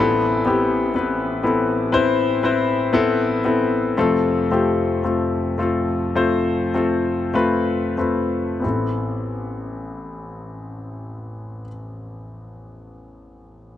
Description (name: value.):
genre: pop.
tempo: 45-62 BPM.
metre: 4/4.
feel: straight.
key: A minor.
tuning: A4 = 441 Hz.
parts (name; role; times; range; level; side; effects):
clear concert grand piano; accompaniment; 0.0-13.8 s; F1 to C5; -19 LUFS; left 2 dB; none.
picked steel-string acoustic guitar; arpeggios; 0.0-0.6 s; none; barely audible; none; none.
room: moderate plate reverb, RT60 3.0 s.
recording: nothing above 10.6 kHz.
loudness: -18 LUFS.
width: side -11 dB against mid.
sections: 0.0-8.6 A section; 8.6-13.8 B section.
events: slowing down 0.0-8.6.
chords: 0.0 Amadd9; 4.0 F; 8.6 Amadd9.